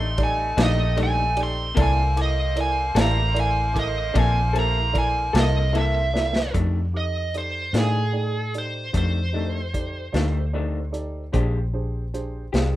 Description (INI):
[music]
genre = slow blues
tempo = 50 BPM (dotted quarters)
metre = 12/8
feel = straight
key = unclear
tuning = A4 = 442 Hz
[part]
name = smooth overdriven lead guitar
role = melody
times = 0.0-11.3 s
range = Ab4 to C6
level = -26 LUFS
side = right 2 dB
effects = none
[part]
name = dark grand piano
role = accompaniment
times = 0.0-12.8 s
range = G3 to D6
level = -32 LUFS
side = right 3 dB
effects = none
[part]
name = electric guitar through a small old amp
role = accompaniment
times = 0.0-12.8 s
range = F2 to A4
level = -29 LUFS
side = left 5 dB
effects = tremolo
[part]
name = mellow horn section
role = sustained chords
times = 0.0-6.5 s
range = A3 to C5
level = -35 LUFS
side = left 2 dB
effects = none
[part]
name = vintage muted fingered electric bass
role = bass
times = 0.0-12.8 s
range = A1 to A2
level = -24 LUFS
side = equal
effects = none
[part]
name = crunchy breakbeat drum kit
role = drums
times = 0.2-12.7 s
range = hi-hat, kick drum, ride cymbal, snare drum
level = -26 LUFS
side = equal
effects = none
[sound]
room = light reverb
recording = rough home demo mix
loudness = -20 LUFS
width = side -14 dB against mid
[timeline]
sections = 0.0-6.5 A section; 6.5-12.8 B section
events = lead electric guitar solo 0.0-6.5; drum fill 6.1-6.5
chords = 0.0 F13; 1.8 C13; 6.5 F13; 11.3 Bb13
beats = 0.58 | 1.77 2.96 4.15 5.35 | 6.54 7.74 8.94 10.14 | 11.34 12.54